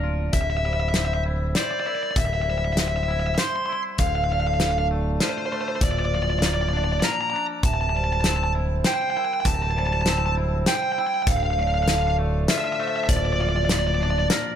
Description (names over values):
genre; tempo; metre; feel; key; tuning
post-rock; 99 BPM; 3/4; straight; unclear; A4 = 440 Hz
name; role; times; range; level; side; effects
twangy electric guitar; arpeggios; 0.0-14.6 s; D2 to C5; -31 LUFS; left 2 dB; spring reverb, digital delay
vibraphone with medium mallets; arpeggios; 0.0-14.6 s; Bb4 to F5; -35 LUFS; right 6 dB; digital delay
growling fingered electric bass; bass; 0.0-14.3 s; D1; -24 LUFS; equal; overdrive
dark smooth lead guitar; melody; 0.3-14.3 s; C5 to C6; -25 LUFS; equal; overdrive, digital delay
loose indie drum kit; drums; 0.3-14.4 s; hi-hat, kick drum, snare drum; -23 LUFS; equal; none
room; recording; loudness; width
light reverb; none; -20 LUFS; side -9 dB against mid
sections
0.3-14.6 A section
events
none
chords
0.3 Cadd9/D; 4.0 Dm7; 5.8 Bbadd9/D; 7.6 Cadd9/D; 11.3 Dm7; 13.1 Bbadd9/D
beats
| 0.34 0.95 1.56 | 2.17 2.78 3.39 | 4.00 4.60 5.21 | 5.82 6.43 7.03 | 7.64 8.25 8.85 | 9.46 10.07 10.67 | 11.28 11.88 12.49 | 13.10 13.70 14.31